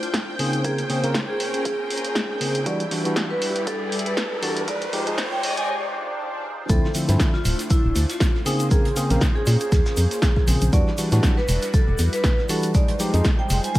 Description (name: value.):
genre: deep house.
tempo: 119 BPM.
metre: 4/4.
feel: swing 55% on 16ths.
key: unclear.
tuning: A4 = 440 Hz.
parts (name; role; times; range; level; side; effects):
vibraphone with medium hard mallets; melody; 0.0-13.8 s; Eb4 to Ab5; -28 LUFS; right 1 dB; low-pass filter, dub echo.
warm analog pad; sustained chords; 0.0-13.8 s; G3 to C5; -33 LUFS; equal; chorus, sidechain pumping.
punchy analog drum machine; drums; 0.0-13.8 s; hi-hat, snare drum; -28 LUFS; equal; studio reverb.
riser and swell; sound effects; 1.7-6.7 s; none; -32 LUFS; equal; none.
rich studio string section; texture; 0.0-5.7 s; G3 to G5; -33 LUFS; left 2 dB; sidechain pumping.
string machine, violins; texture; 0.0-5.7 s; G5; -35 LUFS; right 1 dB; ensemble chorus, sidechain pumping.
electronic kick drum; drums; 0.1-13.8 s; none; -21 LUFS; equal; high-pass filter on kick, studio reverb, high-pass filter on room.
tine electric piano; stabs; 0.4-13.3 s; Db3 to Bb4; -26 LUFS; equal; sidechain pumping, dub echo.
organ-like FM bass; bass; 6.7-13.6 s; D1 to Bb2; -20 LUFS; equal; sidechain pumping.
warm soul drum kit; drums; 6.7-13.8 s; hi-hat, shaker, snare drum; -38 LUFS; equal; none.
egg shaker; percussion; 6.7-13.8 s; none; -37 LUFS; left 1 dB; none.
room: light reverb, small room ambience.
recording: echo-heavy mix, vinyl crackle, high-pass filter.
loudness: -19 LUFS.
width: side -16 dB against mid.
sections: 0.0-6.7 A section; 6.7-13.8 B section.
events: build-up 0.0-6.7; filter sweep on analog synth pad 0.0-6.7; riser 1.7-5.7; break 5.7-6.7; swell 5.7-6.7; drop 6.7-13.8.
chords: 0.4 Bbm9; 2.7 Em9; 4.7 Fm9; 6.7 Dm9; 8.5 Bbm9; 10.7 Em9; 12.7 Fm9.